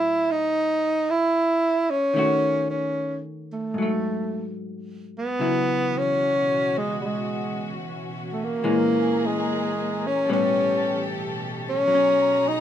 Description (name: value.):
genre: jazz ballad.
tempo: 74 BPM.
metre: 4/4.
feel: swing 68% on 8ths.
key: unclear.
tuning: A4 = 441 Hz.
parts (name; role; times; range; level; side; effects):
breathy tenor saxophone; melody; 0.0-12.6 s; G3 to E4; -22 LUFS; equal; none.
vintage hollow-body jazz guitar; accompaniment; 0.0-12.6 s; G#2 to F#4; -28 LUFS; left 3 dB; none.
warm studio string section; sustained chords; 5.4-12.6 s; B2 to A#5; -30 LUFS; left 2 dB; none.
room: moderate club ambience, RT60 0.5 s.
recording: minimal, uncompressed stereo recording.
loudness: -21 LUFS.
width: side -10 dB against mid.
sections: 0.0-12.6 A section.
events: none.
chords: 0.0 A69; 2.1 D#m7b5; 3.8 F#madd9/G#; 5.4 C#m7; 8.6 A#m7b5; 10.3 A9; 11.9 G#m11.